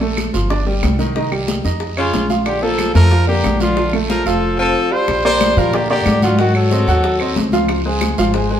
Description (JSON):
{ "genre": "Afro-Cuban jazz", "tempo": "184 BPM", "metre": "4/4", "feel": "straight", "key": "Bb major", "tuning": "A4 = 440 Hz", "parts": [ { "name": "clear upright piano", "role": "accompaniment", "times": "0.0-8.6 s", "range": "Eb3 to Gb5", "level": "-19 LUFS", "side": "right 1 dB", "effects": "none" }, { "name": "upright bass", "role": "bass", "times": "0.0-8.6 s", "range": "F1 to Bb2", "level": "-18 LUFS", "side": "equal", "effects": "none" }, { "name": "bongos", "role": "percussion", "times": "0.0-8.6 s", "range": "none", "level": "-28 LUFS", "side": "left 2 dB", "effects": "none" }, { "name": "congas", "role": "percussion", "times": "0.0-8.6 s", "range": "none", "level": "-23 LUFS", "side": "left 2 dB", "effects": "none" }, { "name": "claves", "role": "percussion", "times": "0.2-8.2 s", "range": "none", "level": "-31 LUFS", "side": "right 2 dB", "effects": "none" }, { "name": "guiro", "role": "percussion", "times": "0.2-8.6 s", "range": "none", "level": "-30 LUFS", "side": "right 4 dB", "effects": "none" }, { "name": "clear trumpet", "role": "melody", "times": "2.0-7.5 s", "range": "F4 to C5", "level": "-20 LUFS", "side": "equal", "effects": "none" }, { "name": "clear tenor saxophone", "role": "second line", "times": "2.0-7.5 s", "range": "Db3 to G3", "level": "-20 LUFS", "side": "left 2 dB", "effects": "none" } ], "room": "wet stone room reverb, RT60 1.2 s", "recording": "band playing live in one room", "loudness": "-13 LUFS", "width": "side -10 dB against mid", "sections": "0.0-5.1 A section; 5.1-8.6 B section", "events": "none", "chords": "0.0 Bbmaj7(no3); 0.5 G5; 1.2 Cm; 1.8 Bbmadd11; 2.5 Bbmaj7; 4.4 F; 5.1 Bb69; 6.4 Ab7b9; 7.7 Dbmaj7" }